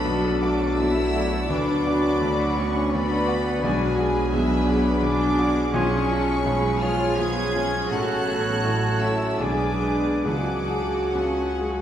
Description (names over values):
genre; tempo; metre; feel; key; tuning
classical; 66-87 BPM; 3/4; rubato; unclear; A4 = 440 Hz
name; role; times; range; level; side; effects
clear baby grand piano; melody; 0.0-11.8 s; A1 to D5; -27 LUFS; left 1 dB; none
clear studio violin section; melody; 0.0-11.8 s; G#5 to G#6; -33 LUFS; equal; none
clear oboe; second line; 0.0-11.8 s; C#5 to F#5; -35 LUFS; equal; none
clear studio violin section; second line; 0.0-11.8 s; E#4 to F#5; -34 LUFS; left 2 dB; none
silver concert flute; second line; 0.0-11.8 s; G#5 to B5; -35 LUFS; left 1 dB; none
warm clarinet; second line; 0.0-11.8 s; E#4 to G#4; -33 LUFS; equal; none
warm studio viola section; accompaniment; 0.0-11.8 s; F#3 to A4; -29 LUFS; equal; none
dark French horn section; sustained chords; 0.0-11.8 s; E#3 to F#4; -30 LUFS; left 3 dB; none
dark trumpet section; stabs; 0.0-11.8 s; G#4 to B4; -32 LUFS; right 2 dB; none
dark studio double bass section; bass; 0.0-11.8 s; A1 to D2; -29 LUFS; right 2 dB; none
rich studio cello section; bass; 0.0-11.8 s; G#3 to G#4; -29 LUFS; right 1 dB; none
timpani; percussion; 10.3-11.5 s; C#3; -34 LUFS; equal; none
room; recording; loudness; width
wet recital hall reverb, RT60 1.8 s; recorded in a church or concert hall; -20 LUFS; side -10 dB against mid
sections
0.0-11.8 A section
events
none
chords
0.0 Bm7; 1.5 Bm/D; 3.6 G#m7b5/B; 5.7 C#7/B; 7.9 F#m/A; 9.4 G#dim/B; 10.2 C#sus4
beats
0.06 0.78 | 1.50 2.22 2.93 | 3.64 4.33 5.03 | 5.74 6.46 7.18 | 7.90 8.63 9.40 | 10.25 11.15